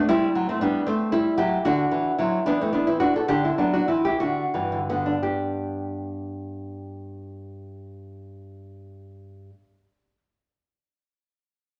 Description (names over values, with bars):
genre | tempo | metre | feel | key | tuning
classical, baroque-style dance for nylon-string guitar | 56-79 BPM (dotted quarters) | 6/8 | rubato | G major | A4 = 440 Hz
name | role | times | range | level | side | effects
nylon-string guitar | solo | 0.0-10.2 s | G2 to A4 | -25 LUFS | equal | none
room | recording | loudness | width
wet large studio reverb, RT60 1.1 s | none | -24 LUFS | mono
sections
0.0-5.2 A section; 5.2-9.2 B section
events
slowing down 0.9-5.2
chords
0.1 G; 0.9 Am; 1.7 D7; 2.5 E5; 3.3 D13; 4.2 D; 5.2 G